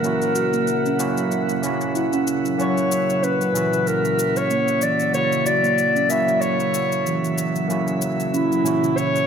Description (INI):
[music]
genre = organic downtempo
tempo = 94 BPM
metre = 4/4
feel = swing 56% on 16ths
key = unclear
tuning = A4 = 440 Hz
[part]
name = dark clarinet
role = melody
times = 0.0-9.3 s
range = E4 to E5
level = -22 LUFS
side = left 1 dB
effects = tape echo
[part]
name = overdriven tine electric piano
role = accompaniment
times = 0.0-9.3 s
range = A#2 to F#4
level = -26 LUFS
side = right 3 dB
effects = vintage 12-bit sampler grit, low-pass filter, tape echo
[part]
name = bowed-like drone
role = sustained chords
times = 0.0-9.3 s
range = C#3 to F#5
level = -28 LUFS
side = equal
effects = built-in reverb
[part]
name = steel tongue drum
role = arpeggios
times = 0.0-9.0 s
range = C#3 to F#4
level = -25 LUFS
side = right 2 dB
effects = tape echo
[part]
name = shaker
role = drums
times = 0.0-9.3 s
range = none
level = -32 LUFS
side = left 6 dB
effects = none
[part]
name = drifting glass-harmonics texture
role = texture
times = 0.0-9.3 s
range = E5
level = -32 LUFS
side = right 4 dB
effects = chorus, built-in reverb
[sound]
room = moderate lush hall reverb, RT60 1.6 s, small room ambience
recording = none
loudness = -18 LUFS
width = side -7 dB against mid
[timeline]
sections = 0.0-9.3 A section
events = filter sweep on steel tongue drum 0.0-9.3; filter sweep on tine electric piano 0.0-9.3; filter sweep on synth drone 0.0-9.3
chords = 0.0 F#7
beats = | 0.04 0.68 1.32 1.96 | 2.59 3.23 3.87 4.51 | 5.15 5.79 6.42 7.06 | 7.70 8.34 8.98